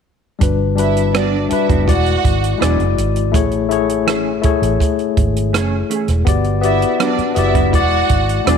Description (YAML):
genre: lush 1970s-style soul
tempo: 82 BPM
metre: 4/4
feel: straight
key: A major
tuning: A4 = 439 Hz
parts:
  - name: tine electric piano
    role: accompaniment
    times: 0.4-8.6 s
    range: G3 to D5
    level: -17 LUFS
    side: left 10 dB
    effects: overdrive, slow stereo tremolo
  - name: vintage muted fingered electric bass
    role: bass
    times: 0.4-8.6 s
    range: E1 to A1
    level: -18 LUFS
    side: right 1 dB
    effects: none
  - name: compact cocktail drum kit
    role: drums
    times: 0.4-8.6 s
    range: hi-hat, kick drum, rim click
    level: -19 LUFS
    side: right 3 dB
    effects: none
  - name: rich studio violin section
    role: second line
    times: 0.8-8.4 s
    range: D4 to F#5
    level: -20 LUFS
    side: right 13 dB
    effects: none
  - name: mellow electric guitar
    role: riff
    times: 1.1-8.6 s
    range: E3 to G#4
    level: -24 LUFS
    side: right 13 dB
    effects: analog chorus
room: light reverb, small room ambience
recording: 1960s-style stereo with parts hard left and right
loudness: -13 LUFS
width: side -7 dB against mid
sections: 0.4-8.6 A section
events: none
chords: 0.4 Gmaj7; 1.9 E9; 3.3 Amaj7; 6.3 Gmaj7; 7.7 E9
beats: | 0.41 1.14 1.88 2.61 | 3.34 4.07 4.80 5.54 | 6.27 7.00 7.73 8.47